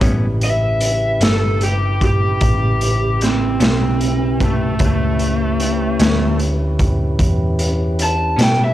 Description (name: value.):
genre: slow blues.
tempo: 50 BPM (dotted quarters).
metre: 12/8.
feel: straight.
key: A mixolydian.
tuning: A4 = 439 Hz.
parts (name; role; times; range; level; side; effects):
clean electric guitar; accompaniment; 0.0-8.6 s; A2 to C#4; -23 LUFS; left 2 dB; tremolo, cassette tape.
mellow tonewheel organ; sustained chords; 0.0-8.7 s; C#3 to B4; -26 LUFS; equal; slow rotary speaker, cassette tape.
hollow-body short-scale picked electric bass; bass; 0.0-8.7 s; G1 to B2; -19 LUFS; equal; none.
raw garage drum kit; drums; 0.0-8.6 s; hi-hat, kick drum, snare drum; -19 LUFS; equal; none.
lead guitar through a small cranked amp; melody; 0.4-8.7 s; A3 to A5; -19 LUFS; equal; overdrive, cassette tape.
room: small room reverb.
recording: home recording on cassette.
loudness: -14 LUFS.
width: side -13 dB against mid.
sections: 0.0-8.7 A section.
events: lead electric guitar solo 0.0-8.7.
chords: 0.0 A9.